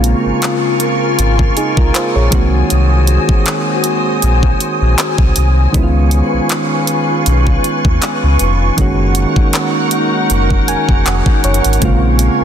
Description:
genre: contemporary R&B.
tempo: 79 BPM.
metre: 4/4.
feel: swing 54% on 16ths.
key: Bb minor.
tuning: A4 = 440 Hz.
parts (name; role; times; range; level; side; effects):
soft electric-piano-like synth keys; accompaniment; 0.0-12.4 s; C3 to Ab5; -17 LUFS; right 2 dB; chorus.
glassy FM pad; sustained chords; 0.0-12.4 s; Eb4 to Eb6; -17 LUFS; left 1 dB; ensemble chorus, built-in reverb.
sub bass with octave; bass; 0.0-12.4 s; F1 to Eb2; -13 LUFS; equal; none.
trap drum kit; drums; 0.0-12.4 s; handclaps, hi-hat, kick drum; -16 LUFS; equal; none.
room: little or no reverb.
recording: dense, heavily limited modern master.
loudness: -11 LUFS.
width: side -9 dB against mid.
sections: 0.0-12.4 A section.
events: synth keys fill 10.3-11.8.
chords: 0.0 Bbm7; 2.3 Ab7; 5.7 Db7; 8.8 Gb6; 11.8 Bbm7.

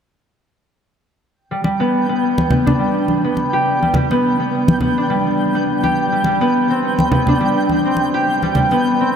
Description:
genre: organic downtempo.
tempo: 104 BPM.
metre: 4/4.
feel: swing 56% on 16ths.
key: G major.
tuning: A4 = 440 Hz.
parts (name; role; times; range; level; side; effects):
twinkling granular texture; texture; 1.8-9.2 s; G5; -26 LUFS; right 1 dB; built-in reverb, analog chorus.
concert harp; arpeggios; 1.5-9.2 s; G3 to G4; -15 LUFS; equal; low-pass filter, diffuse ambient delay.
congas; percussion; 1.6-8.8 s; none; -20 LUFS; equal; none.
room: wet huge ambient reverb, RT60 8.4 s.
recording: dreamy mix soaked in reverb.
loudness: -14 LUFS.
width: side -7 dB against mid.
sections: 1.4-9.2 A section.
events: none.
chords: 1.4 G; 6.0 Csus2/G.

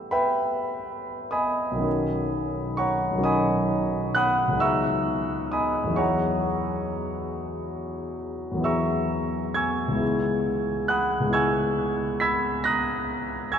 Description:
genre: classical, impressionist solo piano.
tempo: 32-47 BPM (dotted quarters).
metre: 9/8.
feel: rubato.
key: B major.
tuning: A4 = 440 Hz.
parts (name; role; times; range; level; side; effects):
warm concert grand piano; solo; 0.0-13.6 s; B1 to B6; -23 LUFS; equal; none.
room: wet cathedral reverb, RT60 5.8 s.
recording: in a vast, echoing space.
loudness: -23 LUFS.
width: side -8 dB against mid.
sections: 0.0-1.9 A section; 1.9-13.6 B section.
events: none.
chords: 0.0 A9; 1.9 Bmaj9; 4.6 C#m11; 6.0 E69; 10.0 C#m7.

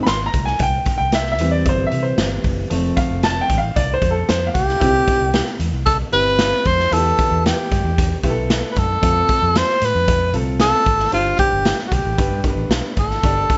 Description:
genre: uptempo 1960s-style soul.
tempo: 114 BPM.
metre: 4/4.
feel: straight.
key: C major from 4.8 s.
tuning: A4 = 440 Hz.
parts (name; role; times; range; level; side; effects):
warm upright piano; accompaniment; 0.0-13.6 s; G2 to C6; -24 LUFS; equal; none.
vintage muted fingered electric bass; bass; 0.1-13.4 s; F1 to C3; -25 LUFS; equal; none.
raw garage drum kit; drums; 0.1-13.6 s; hi-hat, kick drum, snare drum; -23 LUFS; equal; none.
breathy tenor saxophone; melody; 4.5-13.6 s; F4 to C5; -20 LUFS; equal; none.
room: light reverb.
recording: nothing above 7.8 kHz.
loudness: -18 LUFS.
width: mono.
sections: 0.0-4.8 A section; 4.8-13.6 B section.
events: upright piano solo 0.0-4.8.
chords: 0.0 Ab; 0.6 C; 2.7 F; 4.8 C; 6.9 Em; 9.0 F; 11.1 Gsus4; 12.2 G.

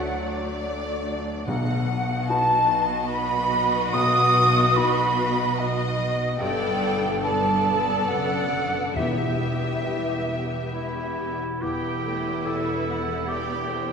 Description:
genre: cinematic, emotional film score for orchestra.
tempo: 67-75 BPM.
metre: 3/4.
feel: rubato.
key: E minor.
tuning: A4 = 437 Hz.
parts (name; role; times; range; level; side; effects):
rich symphonic violin section; melody; 0.0-13.9 s; D5 to G5; -34 LUFS; left 2 dB; none.
mellow hollow silver concert flute; second line; 0.0-11.2 s; D5 to D#6; -24 LUFS; right 1 dB; none.
warm symphonic violin section; second line; 0.0-13.9 s; B4 to D#6; -32 LUFS; equal; none.
dark baby grand piano; accompaniment; 0.0-13.9 s; B1 to B4; -34 LUFS; left 2 dB; none.
rich symphonic viola section; accompaniment; 0.0-13.9 s; F#3 to A4; -30 LUFS; left 1 dB; none.
concert harp; arpeggios; 0.0-13.9 s; E2 to B5; -35 LUFS; left 6 dB; none.
rich symphonic cello section; bass; 0.0-13.9 s; D2 to B2; -32 LUFS; right 2 dB; none.
warm symphonic double bass section; bass; 0.0-13.9 s; E1 to D2; -32 LUFS; right 1 dB; none.
timpani; percussion; 1.5-2.7, 9.0-10.3 s; E2 to B2; -32 LUFS; left 2 dB; none.
mellow clarinet; second line; 10.7-13.9 s; E4 to A4; -29 LUFS; right 2 dB; none.
room: wet scoring stage reverb, RT60 1.6 s.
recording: minimal, uncompressed stereo recording.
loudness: -21 LUFS.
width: side -6 dB against mid.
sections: 0.0-11.6 A section; 11.6-13.9 A section.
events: none.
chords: 0.0 D; 1.5 B; 6.4 Gadd9; 9.0 Em.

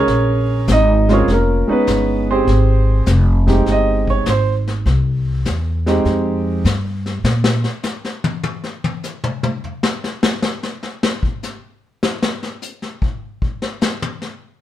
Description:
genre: jazz piano trio.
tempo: 100 BPM.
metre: 4/4.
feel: swing 68% on 8ths.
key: F minor.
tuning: A4 = 440 Hz.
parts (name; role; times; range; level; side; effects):
warm concert grand piano; melody; 0.0-6.6 s; Ab3 to Eb5; -16 LUFS; right 2 dB; none.
upright bass; bass; 0.0-7.6 s; F1 to Bb2; -16 LUFS; equal; none.
vintage brush drum kit; drums; 0.1-14.4 s; brushed snare drum, hi-hat, kick drum, snare drum, toms; -21 LUFS; left 2 dB; none.
room: light reverb.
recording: band playing live in one room.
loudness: -15 LUFS.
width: side -12 dB against mid.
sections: 0.0-14.6 A section.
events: grand piano solo 0.0-14.6; drum solo 7.3-14.6.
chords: 0.1 Bbm7; 2.5 Fm9; 7.3 N.C..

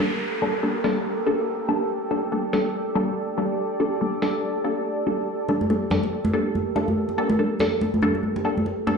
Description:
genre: deep dubstep.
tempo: 142 BPM.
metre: 4/4.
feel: swing 59% on 16ths, half-time.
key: G minor.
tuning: A4 = 440 Hz.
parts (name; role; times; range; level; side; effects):
deep dark ambient pad; sustained chords; 0.0-9.0 s; G4 to D5; -26 LUFS; right 2 dB; chorus, built-in reverb.
filtered dub chord stab; stabs; 0.0-9.0 s; G3 to A4; -24 LUFS; left 1 dB; phaser, cassette tape, dub echo.
downlifter; sound effects; 0.0-1.9 s; none; -33 LUFS; equal; none.
electronic hi-hat; drums; 0.8-7.7 s; none; -36 LUFS; right 1 dB; low-pass filter on snare, low-pass filter on hats.
congas; percussion; 5.5-9.0 s; none; -25 LUFS; right 1 dB; none.
room: wet digital room reverb, RT60 1.0 s, digital ambience.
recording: played on a big sound system in a bare room, stone room reverb, nothing above 10.8 kHz.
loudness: -21 LUFS.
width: side -5 dB against mid.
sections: 0.0-9.0 A section.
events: none.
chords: 0.0 Gmadd9.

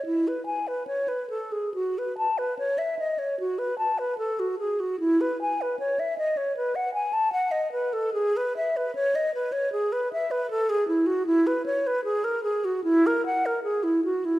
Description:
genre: classical, baroque-style fantasia for unaccompanied flute.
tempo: 76 BPM.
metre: 4/4.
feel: uneven beats, rubato.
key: E major.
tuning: A4 = 440 Hz.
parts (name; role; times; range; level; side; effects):
mellow hollow silver concert flute; solo; 0.0-14.4 s; E4 to A5; -24 LUFS; equal; none.
room: wet recital hall reverb, RT60 1.7 s.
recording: none.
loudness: -24 LUFS.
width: side -16 dB against mid.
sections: 0.0-14.4 A section.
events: none.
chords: none.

